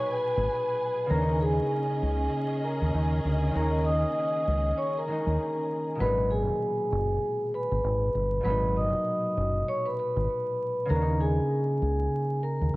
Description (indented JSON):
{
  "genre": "hip hop",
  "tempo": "98 BPM",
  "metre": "4/4",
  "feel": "swing 59% on 16ths",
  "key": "G# minor",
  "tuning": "A4 = 440 Hz",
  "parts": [
    { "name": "vibraphone with soft mallets", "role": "melody", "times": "0.0-12.8 s", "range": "G#4 to D#6", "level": "-28 LUFS", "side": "equal", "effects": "high-pass filter, low-pass filter, cassette tape, analog delay" },
    { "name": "concert harp", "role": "accompaniment", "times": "0.0-12.8 s", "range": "A#2 to D#4", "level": "-32 LUFS", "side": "equal", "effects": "cassette tape, high-pass filter, low-pass filter" },
    { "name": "warm studio string section", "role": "sustained chords", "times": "0.0-6.0 s", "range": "C#4 to G#5", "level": "-36 LUFS", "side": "equal", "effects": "high-pass filter, low-pass filter, cassette tape" },
    { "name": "deep dub fingered electric bass", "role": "bass", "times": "0.4-12.8 s", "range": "F#1 to D#2", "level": "-27 LUFS", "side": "equal", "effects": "none" }
  ],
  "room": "light reverb",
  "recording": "home recording on cassette, vinyl crackle",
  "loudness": "-25 LUFS",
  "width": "side -21 dB against mid",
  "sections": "0.0-6.0 A section; 6.0-12.8 A section",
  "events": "none",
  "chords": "0.0 G#m9; 1.1 D#7sus4; 6.0 G#m9; 10.9 D#7sus4"
}